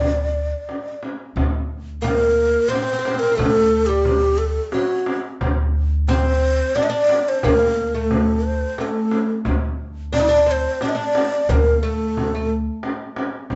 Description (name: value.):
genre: Persian modal ensemble.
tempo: 89 BPM.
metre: 3/4.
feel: straight.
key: D dastgah homayun.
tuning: A4 = 440 Hz.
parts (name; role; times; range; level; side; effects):
breathy low ney; melody; 0.0-12.5 s; F#4 to E5-48c; -22 LUFS; equal; none.
upright bass; bass; 0.0-13.6 s; D2; -25 LUFS; equal; none.
frame drum; percussion; 0.0-13.6 s; none; -28 LUFS; equal; none.
oud; second line; 2.0-12.5 s; F#3 to Eb4+45c; -27 LUFS; equal; none.
room: wet studio reverb, RT60 0.7 s.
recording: band playing live in one room, nothing above 7.9 kHz.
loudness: -20 LUFS.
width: mono.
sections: 0.0-1.4 A section; 1.4-13.6 B section.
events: none.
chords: none.